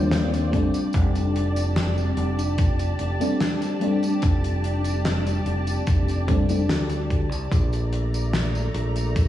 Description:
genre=vaporwave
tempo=73 BPM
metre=4/4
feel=straight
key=F major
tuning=A4 = 441 Hz
part: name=FM electric piano with soft pad layer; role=accompaniment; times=0.0-6.6 s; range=F3 to D4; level=-26 LUFS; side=left 1 dB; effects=ensemble chorus, cassette tape, analog delay
part: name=soft string machine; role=sustained chords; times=0.0-9.3 s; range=A3 to Bb5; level=-31 LUFS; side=equal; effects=ensemble chorus
part: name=fingered electric bass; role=bass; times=0.0-9.3 s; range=F1 to Eb2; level=-24 LUFS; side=equal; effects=none
part: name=damped 70s drum kit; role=drums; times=0.1-9.3 s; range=hi-hat, snare drum, tambourine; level=-30 LUFS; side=left 1 dB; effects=studio reverb, gated reverb
part: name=electronic kick drum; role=drums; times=0.5-9.3 s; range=none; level=-21 LUFS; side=equal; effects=overdrive, studio reverb
room=light reverb, studio reverb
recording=cassette tape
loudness=-21 LUFS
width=side -12 dB against mid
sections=0.0-9.3 A section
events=none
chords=0.0 Ebmaj13; 0.5 F69; 7.5 Bbmaj7

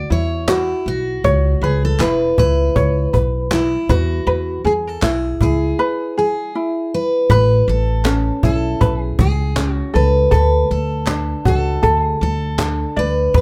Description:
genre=acoustic pop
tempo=79 BPM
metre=4/4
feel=swing 55% on 16ths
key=A major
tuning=A4 = 443 Hz
part: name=picked steel-string acoustic guitar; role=melody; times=0.0-13.4 s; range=E4 to C#5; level=-23 LUFS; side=equal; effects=none
part: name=ukulele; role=accompaniment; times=0.0-13.4 s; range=C#4 to D5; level=-23 LUFS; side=equal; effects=none
part: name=upright bass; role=bass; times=0.0-13.4 s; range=E1 to E2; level=-21 LUFS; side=equal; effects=none
part: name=cajon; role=drums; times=0.1-13.4 s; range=none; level=-22 LUFS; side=equal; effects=none
part: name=group handclap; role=percussion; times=0.5-12.8 s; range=none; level=-33 LUFS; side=equal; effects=none
room=moderate small room reverb, RT60 0.5 s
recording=none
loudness=-17 LUFS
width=mono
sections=0.0-7.3 A section; 7.3-13.4 B section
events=none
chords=0.0 Dadd9 (rootless); 1.2 E5; 3.9 E; 7.3 Aadd9; 10.3 D

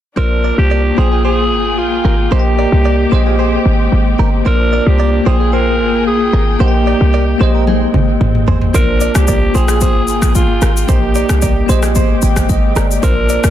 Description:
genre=afrobeats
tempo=112 BPM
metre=4/4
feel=straight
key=unclear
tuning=A4 = 440 Hz
part: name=growling alto saxophone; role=melody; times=0.2-13.5 s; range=F4 to Bb4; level=-19 LUFS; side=equal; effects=tape echo
part: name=bell-like tine electric piano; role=accompaniment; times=0.2-13.5 s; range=Bb3 to G5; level=-18 LUFS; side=left 1 dB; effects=fast stereo tremolo
part: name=muted studio string section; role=sustained chords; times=0.2-13.5 s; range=Ab3 to G5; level=-24 LUFS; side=left 2 dB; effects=none
part: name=direct-recorded clean electric guitar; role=riff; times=0.2-13.4 s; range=Eb4 to D5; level=-23 LUFS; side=right 8 dB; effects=spring reverb, tape echo
part: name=short 808-style bass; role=bass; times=0.2-13.5 s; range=G1 to C2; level=-14 LUFS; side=equal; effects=none
part: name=afro-pop drum kit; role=drums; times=7.7-13.5 s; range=kick drum, rim click, shaker, toms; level=-15 LUFS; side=equal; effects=soft clipping on snare
room=digital ambience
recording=dense, heavily limited modern master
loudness=-10 LUFS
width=side -11 dB against mid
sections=0.2-13.5 A section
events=drum fill 7.7-8.7; tine electric piano fill 12.0-13.0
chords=0.2 Bbadd9; 1.0 Fmadd9; 2.3 Eb/Bb; 3.1 Abmaj7; 4.5 Bbadd9; 5.3 Fmadd9; 6.6 Eb/Bb; 7.4 Abmaj7; 8.7 Bbadd9; 9.5 Fmadd9; 10.9 Eb/Bb; 11.7 Abmaj7

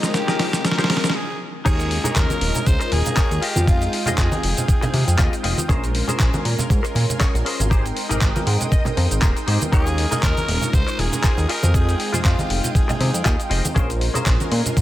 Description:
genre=nu-disco, nu disco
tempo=119 BPM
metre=4/4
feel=swing 55% on 16ths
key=F minor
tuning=A4 = 440 Hz
part: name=breathy tenor saxophone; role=melody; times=0.0-5.4, 9.7-13.5 s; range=Eb4 to C5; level=-27 LUFS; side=equal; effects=digital delay
part: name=mellow synth brass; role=accompaniment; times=0.0-14.8 s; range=Ab3 to G5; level=-28 LUFS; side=equal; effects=chorus, phaser, vintage 12-bit sampler grit, sidechain pumping
part: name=lush unison pad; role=sustained chords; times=0.0-14.8 s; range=Ab3 to Eb6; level=-33 LUFS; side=equal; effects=chorus, sidechain pumping
part: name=direct-recorded clean electric guitar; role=riff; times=0.0-14.5 s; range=Db4 to G5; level=-28 LUFS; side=left 3 dB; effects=ensemble chorus
part: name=dusty soul sampler-style drum kit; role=drums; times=0.0-14.8 s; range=cabasa, crash cymbal, handclaps, hi-hat, snare drum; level=-25 LUFS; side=equal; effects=none
part: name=chorused synth bass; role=bass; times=1.7-14.8 s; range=Eb1 to C3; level=-21 LUFS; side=equal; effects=none
part: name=electronic kick drum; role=drums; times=1.7-14.8 s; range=none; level=-19 LUFS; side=equal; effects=none
part: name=cabasa and congas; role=percussion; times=1.7-14.8 s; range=none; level=-27 LUFS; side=right 1 dB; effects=none
room=little or no reverb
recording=none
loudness=-17 LUFS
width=side -14 dB against mid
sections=0.0-1.7 A section; 1.7-14.8 B section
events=build-up 0.0-1.7; drum fill 0.0-1.2; break 1.2-1.7; drop 1.7-14.8; clean electric guitar fill 8.2-9.7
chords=0.0 Abmaj7; 1.7 Eb7sus4; 3.4 Fm9; 5.7 Bbm9; 7.7 Abmaj7; 9.7 Eb7sus4; 11.5 Fm9; 13.8 Bbm9

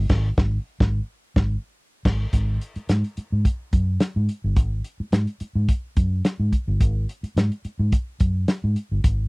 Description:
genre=funk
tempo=107 BPM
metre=4/4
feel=straight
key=unclear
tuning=A4 = 442 Hz
part: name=vintage muted fingered electric bass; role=bass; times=0.0-9.3 s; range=G1 to G#2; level=-22 LUFS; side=equal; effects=none
part: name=warm soul drum kit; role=drums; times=0.1-9.2 s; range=crash cymbal, hi-hat, kick drum, snare drum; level=-20 LUFS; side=equal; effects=none
room=little or no reverb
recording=dry, close 1970s-style studio recording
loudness=-21 LUFS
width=side -34 dB against mid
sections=0.0-2.3 A section; 2.3-9.3 B section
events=band accent 0.1-2.3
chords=none

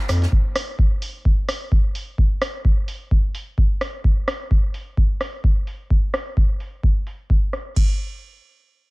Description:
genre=acid house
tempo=129 BPM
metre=4/4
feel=swing 56% on 16ths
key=none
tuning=none
part: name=punchy analog drum machine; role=drums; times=0.1-7.6 s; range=hi-hat, rim click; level=-26 LUFS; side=equal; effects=low-pass filter on hats, low-pass filter on cymbals, low-pass filter on snare, low-pass filter on room
part: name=electro analog drum machine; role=drums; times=0.3-7.9 s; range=crash cymbal, kick drum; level=-18 LUFS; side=equal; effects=none
room=little or no reverb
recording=none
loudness=-18 LUFS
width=side -25 dB against mid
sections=0.0-7.8 A section; 7.8-8.9 B section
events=filter sweep on drum 0.0-7.8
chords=none

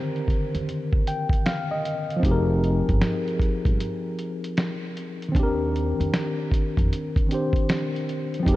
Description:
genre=lo-fi hip hop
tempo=77 BPM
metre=4/4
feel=swing 64% on 16ths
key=unclear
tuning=A4 = 440 Hz
part: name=mellow tine electric piano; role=accompaniment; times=0.0-8.6 s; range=D3 to G5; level=-26 LUFS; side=left 1 dB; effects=overdrive, slow stereo tremolo, low-pass filter
part: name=lo-fi sampler-style drum kit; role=drums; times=0.2-8.6 s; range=hi-hat, kick drum, snare drum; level=-24 LUFS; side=equal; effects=vintage 12-bit sampler grit
part: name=upright bass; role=bass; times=0.5-8.6 s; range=F1 to F2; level=-26 LUFS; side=equal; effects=none
room=light reverb, digital ambience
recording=cassette tape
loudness=-22 LUFS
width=side -16 dB against mid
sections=0.0-8.6 A section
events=tine electric piano fill 0.7-2.2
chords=0.0 Cm9; 2.2 Fm11; 5.3 Cm9/Eb

